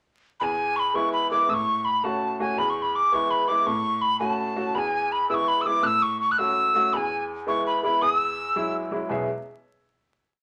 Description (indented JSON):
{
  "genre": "celtic folk, Celtic jig",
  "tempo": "110 BPM (dotted quarters)",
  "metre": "6/8",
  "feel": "straight",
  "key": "E mixolydian",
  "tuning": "A4 = 440 Hz",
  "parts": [
    { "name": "mid whistle", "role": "melody", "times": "0.4-8.7 s", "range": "G#5 to F#6", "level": "-25 LUFS", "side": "equal", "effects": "none" },
    { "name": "bright upright piano", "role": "accompaniment", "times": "0.4-9.3 s", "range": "E2 to E5", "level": "-31 LUFS", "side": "equal", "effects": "none" }
  ],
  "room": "wet studio reverb, RT60 0.7 s",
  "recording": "vinyl crackle",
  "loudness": "-24 LUFS",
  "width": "mono",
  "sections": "0.4-9.1 A section; 9.1-10.2 final chord",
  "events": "none",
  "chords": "0.4 E; 1.5 A6; 2.6 E; 3.7 A6; 4.8 E; 5.8 A6; 6.9 E; 8.0 Eadd9"
}